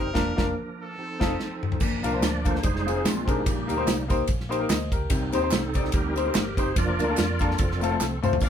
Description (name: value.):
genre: uptempo gospel.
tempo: 145 BPM.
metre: 4/4.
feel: swing 56% on 8ths.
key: Bb major.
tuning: A4 = 440 Hz.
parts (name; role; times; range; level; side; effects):
brilliant trumpet; melody; 0.0-1.6 s; A4 to Bb4; -36 LUFS; right 2 dB; none.
bright grand piano; accompaniment; 0.0-8.5 s; Bb2 to Eb5; -27 LUFS; left 3 dB; none.
bright tonewheel organ; sustained chords; 0.0-8.5 s; F3 to F5; -30 LUFS; right 2 dB; fast rotary speaker, chorus vibrato.
fingered electric bass; bass; 0.0-8.5 s; F1 to F2; -31 LUFS; right 1 dB; none.
natural country drum kit; drums; 0.1-8.5 s; crash cymbal, kick drum, ride cymbal, snare drum, toms; -26 LUFS; equal; none.
tambourine and handclaps; percussion; 1.8-8.5 s; none; -38 LUFS; right 6 dB; none.
room: moderate studio reverb, RT60 0.6 s.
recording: band playing live in one room.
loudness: -22 LUFS.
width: side -9 dB against mid.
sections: 0.0-1.8 A section; 1.8-8.5 B section.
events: band accent 0.2-1.8; drum fill 1.4-1.8, 8.0-8.4; tonewheel organ solo 1.8-8.5.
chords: 0.2 Bb/F; 1.0 F7; 1.8 Bb; 2.6 Fm7; 3.0 Bb9; 3.5 Eb/Bb; 5.1 Cm; 6.8 Bb/F; 7.6 F.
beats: | 0.15 0.57 0.98 1.40 | 1.81 2.22 2.63 3.05 | 3.46 3.87 4.28 4.70 | 5.11 5.52 5.93 6.35 | 6.76 7.17 7.59 8.00 | 8.41.